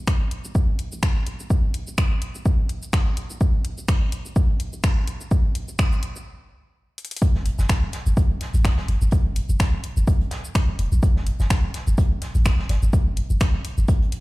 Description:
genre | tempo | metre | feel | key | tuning
minimal techno | 126 BPM | 4/4 | swing 55% on 16ths | G minor | A4 = 440 Hz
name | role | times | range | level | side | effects
punchy sub bass | bass | 0.0-13.8 s | F1 to Bb1 | -22 LUFS | equal | sidechain pumping, high-pass filter
electronic kick drum | drums | 0.1-14.0 s | none | -20 LUFS | equal | overdrive
house drum kit | drums | 0.1-14.2 s | finger snaps, hi-hat, shaker | -30 LUFS | left 1 dB | overdrive
unplugged drum kit | drums | 7.2-14.2 s | hi-hat, snare drum | -39 LUFS | right 1 dB | sidechain pumping on hats, high-pass filter on hats, high-pass filter on snare, high-pass filter on room
room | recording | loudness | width
studio reverb | played on a big sound system in a bare room, large studio reverb | -19 LUFS | side -20 dB against mid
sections
0.0-7.2 A section; 7.2-14.2 B section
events
build-up 0.0-7.2; stop 6.3-7.2; drum fill 7.0; drop 7.2-14.2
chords
none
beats
0.07 0.55 1.03 | 1.50 1.98 2.46 2.93 | 3.41 3.88 4.36 4.84 | 5.31 5.79 6.27 6.74 | 7.22 7.69 8.17 8.65 | 9.12 9.60 10.07 10.55 | 11.03 11.50 11.98 12.46 | 12.93 13.41 13.88

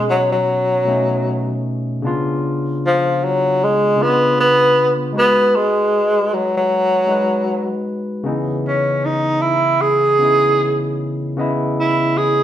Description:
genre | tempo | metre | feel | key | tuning
R&B | 77 BPM | 4/4 | swing 55% on 16ths | C# minor | A4 = 440 Hz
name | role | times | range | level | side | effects
breathy tenor saxophone | melody | 0.0-12.4 s | E#3 to G#4 | -15 LUFS | equal | none
barky tine electric piano | accompaniment | 0.0-12.4 s | B2 to D#5 | -21 LUFS | left 1 dB | overdrive
room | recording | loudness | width
wet stone room reverb, RT60 1.2 s | band playing live in one room | -14 LUFS | side -11 dB against mid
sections
0.0-8.3 A section; 8.3-12.4 B section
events
none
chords
0.0 B9; 2.0 C#7b9; 5.2 G#m7; 8.3 C#m9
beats
0.48 1.25 | 2.03 2.81 3.59 4.37 | 5.15 5.93 6.71 7.49 | 8.27 9.05 9.83 10.61 | 11.38 12.16

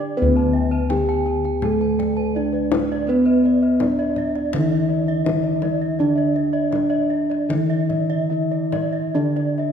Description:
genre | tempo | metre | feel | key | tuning
Javanese gamelan | 68-83 BPM | 4/4 | straight | D pelog barang | A4 = 441 Hz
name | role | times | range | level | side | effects
gamelan-type bronze metallophone | melody | 0.0-9.7 s | B3+20c to A4-40c | -22 LUFS | equal | none
gamelan-type bronze metallophone | accompaniment | 0.0-9.7 s | D3 to D4 | -24 LUFS | right 2 dB | none
gamelan-type bossed gongs | arpeggios | 0.0-9.7 s | B4+20c to A5-40c | -29 LUFS | left 6 dB | none
gamelan-type bronze metallophone | arpeggios | 0.0-9.7 s | B4+20c to A5-40c | -30 LUFS | right 6 dB | none
gamelan-type bossed gongs | bass | 0.0-9.7 s | D2 to B4+20c | -25 LUFS | left 2 dB | none
kendang | percussion | 0.0-9.7 s | none | -29 LUFS | left 6 dB | none
room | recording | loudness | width
moderate scoring stage reverb, RT60 1.9 s | minimal, uncompressed stereo recording | -18 LUFS | side -8 dB against mid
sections
0.2-9.7 A section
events
none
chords
none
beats
| 0.18 0.91 1.64 2.36 | 3.09 3.81 4.54 5.27 | 5.99 6.73 7.50 8.31 | 9.15

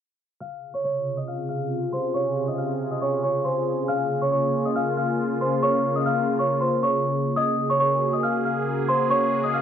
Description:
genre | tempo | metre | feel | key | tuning
hip hop | 138 BPM | 4/4 | half-time | unclear | A4 = 439 Hz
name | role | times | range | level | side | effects
celesta | melody | 0.4-9.6 s | C5 to F6 | -24 LUFS | right 1 dB | low-pass filter
sweeping resonant pad | sustained chords | 0.9-9.6 s | C3 to Ab4 | -25 LUFS | left 1 dB | chorus, low-pass filter
room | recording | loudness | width
light reverb | dark, warm production | -21 LUFS | side -8 dB against mid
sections
0.4-9.6 A section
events
filter sweep 0.4-9.6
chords
0.4 Dbmaj7; 3.9 Bbm7; 7.4 Gbadd9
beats
| 0.41 0.84 1.28 1.71 | 2.15 2.58 3.02 3.45 | 3.88 4.32 4.75 5.19 | 5.62 6.06 6.49 6.93 | 7.36 7.80 8.23 8.67 | 9.10 9.54

